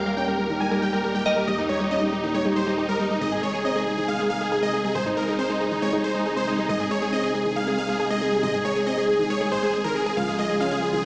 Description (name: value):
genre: trance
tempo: 138 BPM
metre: 4/4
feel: straight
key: Ab major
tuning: A4 = 439 Hz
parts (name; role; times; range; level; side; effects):
- supersaw chords; melody; 0.0-11.0 s; Eb4 to Ab5; -24 LUFS; equal; low-pass filter
- glassy synth bell; second line; 0.0-3.1 s; Eb5 to G5; -30 LUFS; equal; chorus, digital delay
- dark studio string section; sustained chords; 0.0-11.1 s; Bb2 to Ab4; -28 LUFS; equal; none
- solid FM bass; bass; 0.0-11.1 s; Ab1 to Eb2; -38 LUFS; equal; none
- analog pluck; arpeggios; 0.1-11.0 s; G2 to Ab4; -27 LUFS; equal; chorus, digital delay
room: wet lush hall reverb, RT60 2.8 s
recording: played on a big sound system in a bare room, large studio reverb, small speaker sound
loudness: -21 LUFS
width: side -25 dB against mid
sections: 0.0-11.1 A section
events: filter sweep on synth pluck 0.0-11.1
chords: 0.0 Eb; 3.2 Ab; 10.2 Db